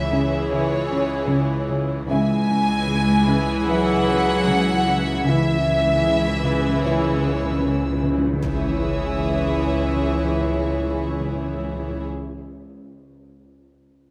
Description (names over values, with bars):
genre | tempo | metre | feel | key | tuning
cinematic, suspense film score | 76 BPM | 4/4 | straight | C# minor | A4 = 440 Hz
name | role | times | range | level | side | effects
rich studio violin section | melody | 0.0-12.0 s | C#5 to G#5 | -28 LUFS | equal | none
dark studio violin section | second line | 0.0-12.0 s | G#4 to C#5 | -31 LUFS | equal | none
warm studio viola section | accompaniment | 0.0-12.0 s | E3 to E4 | -31 LUFS | equal | none
rich studio double bass section | bass | 0.0-12.0 s | C#2 | -30 LUFS | equal | none
warm studio cello section | bass | 0.0-12.0 s | C#3 to G#3 | -29 LUFS | equal | none
bowed-like drone | drone | 0.0-12.0 s | C#2 | -35 LUFS | equal | none
concert harp | texture | 0.0-7.2 s | F#6 | -46 LUFS | equal | none
warm studio cello section | riff | 0.1-8.3 s | C#3 | -29 LUFS | equal | none
mellow French horn section | sustained chords | 0.5-12.0 s | E3 to E4 | -31 LUFS | equal | none
timpani | percussion | 2.1-12.0 s | C#3 | -30 LUFS | equal | none
warm studio violin section | texture | 2.1-11.1 s | C#6 to B6 | -40 LUFS | equal | none
impact | sound effects | 8.4-12.1 s | none | -35 LUFS | equal | none
room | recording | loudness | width
moderate scoring stage reverb, RT60 1.9 s | close, detailed microphones | -21 LUFS | mono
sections
0.0-8.4 A section; 8.4-11.6 B section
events
timpani fill 2.1-8.4; impact 8.4-11.6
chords
0.0 C#m; 2.1 E/C#; 8.4 C#m